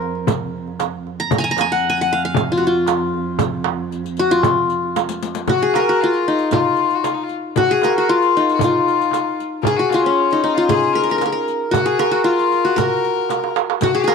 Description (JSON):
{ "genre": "Arabic maqam ensemble", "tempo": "115 BPM", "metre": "4/4", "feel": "straight", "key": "F maqam kurd", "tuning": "A4 = 442 Hz", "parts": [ { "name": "qanun", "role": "melody", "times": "0.0-14.1 s", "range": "Db4 to Bb5", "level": "-17 LUFS", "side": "left 2 dB", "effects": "none" }, { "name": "dark cello", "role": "drone", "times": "0.0-5.5 s", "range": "F2", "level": "-27 LUFS", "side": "right 5 dB", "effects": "none" }, { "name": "darbuka", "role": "percussion", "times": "0.0-14.1 s", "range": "none", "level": "-23 LUFS", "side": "right 13 dB", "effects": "none" }, { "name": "frame drum", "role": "percussion", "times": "0.3-14.1 s", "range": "none", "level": "-25 LUFS", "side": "left 8 dB", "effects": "none" }, { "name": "riq", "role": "percussion", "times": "0.3-14.1 s", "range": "none", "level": "-31 LUFS", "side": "left 10 dB", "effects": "none" }, { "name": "bright violin", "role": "second line", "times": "5.5-14.1 s", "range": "Db4 to Bb4", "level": "-24 LUFS", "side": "left 11 dB", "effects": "none" } ], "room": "light reverb, small room reverb", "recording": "1960s-style stereo with parts hard left and right", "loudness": "-15 LUFS", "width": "side -5 dB against mid", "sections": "0.0-5.5 A section; 5.5-14.1 B section", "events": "drum fill 5.0-5.5, 13.3-13.8", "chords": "none", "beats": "0.28 0.80 | 1.32 1.84 2.36 2.88 | 3.40 3.92 4.44 4.96 | 5.48 6.00 6.52 7.04 | 7.57 8.09 8.61 9.13 | 9.65 10.17 10.69 11.21 | 11.73 12.25 12.77 13.30 | 13.82" }